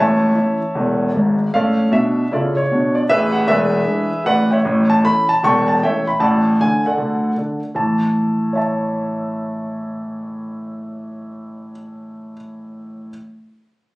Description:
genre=jazz, stride piano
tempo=154 BPM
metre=4/4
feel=swing 62% on 8ths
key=A major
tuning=A4 = 441 Hz
part: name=warm grand piano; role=solo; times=0.0-13.1 s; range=E1 to C#6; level=-16 LUFS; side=equal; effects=none
room=light reverb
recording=recorded on a phone in the room, club reverb, compression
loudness=-15 LUFS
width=side -21 dB against mid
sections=0.0-1.5 A section; 1.5-7.8 B section; 7.8-10.9 C section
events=none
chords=0.0 A; 1.5 Dm/A; 3.1 E7; 4.6 A7; 6.2 D/A; 7.8 A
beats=0.35 0.74 1.13 | 1.52 1.91 2.30 2.69 | 3.08 3.47 3.86 4.25 | 4.64 5.03 5.42 5.81 | 6.20 6.59 6.98 7.37 | 7.76 8.15 8.54 8.93 | 9.32 9.71 10.10 10.49

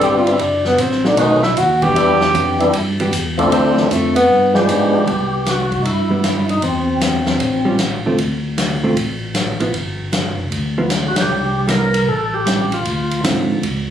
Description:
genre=soul jazz organ trio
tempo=154 BPM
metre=4/4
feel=swing 66% on 8ths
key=C major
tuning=A4 = 439 Hz
part: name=breathy tenor saxophone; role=melody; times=0.0-4.6 s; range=E3 to G4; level=-15 LUFS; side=equal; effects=none
part: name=percussive tonewheel organ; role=melody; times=0.0-7.8, 11.1-13.2 s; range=D#3 to Bb4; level=-17 LUFS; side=left 2 dB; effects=slow rotary speaker
part: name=tonewheel organ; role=bass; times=0.0-13.9 s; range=F#1 to Ab2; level=-22 LUFS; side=equal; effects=chorus vibrato, stopped rotary speaker
part: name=swinging big-band drum kit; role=drums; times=0.0-13.7 s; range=hi-hat, kick drum, ride cymbal, snare drum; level=-22 LUFS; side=left 1 dB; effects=none
part: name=hollow-body jazz guitar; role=accompaniment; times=1.0-13.6 s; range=D3 to Ab4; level=-19 LUFS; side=right 2 dB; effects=none
room=moderate studio reverb, RT60 0.5 s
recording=recorded on a phone in the room, club reverb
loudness=-14 LUFS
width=side -9 dB against mid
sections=0.0-5.1 A section; 5.1-13.9 B section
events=tenor saxophone solo 0.0-5.1; band accent 11.1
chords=0.4 D7b9/F#; 1.2 B7; 2.0 Em7; 3.5 Dm7; 4.3 G7b9; 5.1 Cmaj7; 6.6 C/E; 7.4 A7alt; 8.2 Dm; 9.7 G5; 11.3 Cmaj7; 12.1 A7; 12.8 Dm9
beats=0.01 | 0.40 0.79 1.18 1.57 | 1.96 2.35 2.74 3.13 | 3.52 3.91 4.29 4.68 | 5.07 5.46 5.85 6.24 | 6.63 7.02 7.41 7.79 | 8.18 8.57 8.96 9.35 | 9.74 10.12 10.51 10.90 | 11.29 11.68 12.07 12.45 | 12.84 13.23 13.62

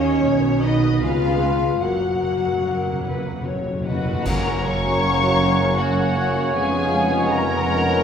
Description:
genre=classical, slow romantic movement for symphony orchestra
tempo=72-82 BPM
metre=3/4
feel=rubato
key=F# major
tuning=A4 = 439 Hz
part: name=muted studio violin section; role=melody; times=0.0-8.0 s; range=A#4 to C#6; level=-27 LUFS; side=left 3 dB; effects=none
part: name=muted studio violin section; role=second line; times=0.0-8.0 s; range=F#4 to F#5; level=-28 LUFS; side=left 2 dB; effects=none
part: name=muted studio viola section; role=accompaniment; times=0.0-8.0 s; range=D#3 to F#4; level=-31 LUFS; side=right 1 dB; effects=none
part: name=mellow French horn section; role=sustained chords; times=0.0-8.0 s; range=A#3 to F#4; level=-23 LUFS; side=left 1 dB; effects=none
part: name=concert harp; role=arpeggios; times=0.0-8.0 s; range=E#2 to B5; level=-30 LUFS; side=left 3 dB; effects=none
part: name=muted studio cello section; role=bass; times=0.0-8.0 s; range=D#2 to C#3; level=-28 LUFS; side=right 2 dB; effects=none
part: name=muted symphonic double bass section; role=bass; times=0.0-8.0 s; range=E#1 to D#2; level=-29 LUFS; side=right 3 dB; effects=none
part: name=cymbal swell, clash cymbals and concert bass drum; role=percussion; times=1.8-5.8 s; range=none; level=-32 LUFS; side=equal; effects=none
part: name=timpani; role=percussion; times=1.8-4.2 s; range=F#2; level=-29 LUFS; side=equal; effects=none
part: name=mellow hollow large flute ensemble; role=second line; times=3.9-8.0 s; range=C#5 to A#5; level=-30 LUFS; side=left 1 dB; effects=none
part: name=mellow oboe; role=second line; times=4.3-8.0 s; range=C#5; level=-30 LUFS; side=equal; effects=none
part: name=warm clarinet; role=second line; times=4.3-8.0 s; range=C#4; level=-30 LUFS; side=equal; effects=none
part: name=mellow bassoon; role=accompaniment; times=4.3-8.0 s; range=A#3 to B3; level=-28 LUFS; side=right 2 dB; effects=none
part: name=warm trombone section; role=sustained chords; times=4.3-8.0 s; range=C#3 to G#3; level=-31 LUFS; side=right 3 dB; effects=none
part: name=brilliant trumpet section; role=stabs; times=4.3-8.0 s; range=C#5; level=-30 LUFS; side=equal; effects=none
part: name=mellow tuba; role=bass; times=4.3-8.0 s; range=E#1 to F#1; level=-28 LUFS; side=right 3 dB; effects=none
room=wet recital hall reverb, RT60 1.6 s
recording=recorded in a church or concert hall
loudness=-18 LUFS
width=side -7 dB against mid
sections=0.0-4.3 A section; 4.3-8.0 B section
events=timpani fill 1.8-4.3; band accent 4.3-5.0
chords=0.3 B; 1.0 C#7; 1.8 F#; 6.5 C#7/E#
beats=0.25 1.01 | 1.81 2.62 3.44 | 4.26 5.03 5.79 | 6.54 7.30

